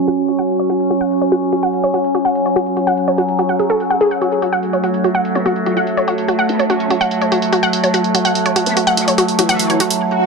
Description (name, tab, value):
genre	psychedelic trance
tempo	145 BPM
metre	4/4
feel	straight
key	F# minor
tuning	A4 = 439 Hz
part	overtone-sweeping drone	sustained chords	0.0-10.3 s	F#3 to C#4	-16 LUFS	right 1 dB	chorus, built-in reverb
part	wide unison pluck	riff	0.1-9.9 s	F#4 to F#5	-17 LUFS	moving between left 3 dB and right 4 dB	auto-pan, digital delay
part	electronic hi-hat	drums	0.1-10.0 s	none	-22 LUFS	right 3 dB	low-pass filter on hats, low-pass filter on perc, low-pass filter on snare, low-pass filter on cymbals, low-pass filter on room
part	vowel-sweep wobble bass	second line	5.4-9.8 s	E3 to C#4	-24 LUFS	left 3 dB	ensemble chorus, high-pass filter, dub echo
part	swell	sound effects	10.1-10.3 s	none	-16 LUFS	right 3 dB	none
room	wet plate reverb, RT60 1.3 s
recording	dense, heavily limited modern master, low-pass filter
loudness	-13 LUFS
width	side -4 dB against mid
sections	0.0-10.3 A section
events	filter sweep on drum 0.0-10.3; filter sweep 0.0-10.3; swell 10.1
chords	0.0 F#5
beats	0.08 0.49 | 0.91 1.32 1.73 2.15 | 2.56 2.97 3.39 3.80 | 4.21 4.63 5.04 5.46 | 5.87 6.28 6.70 7.11 | 7.53 7.94 8.35 8.77 | 9.18 9.60 10.01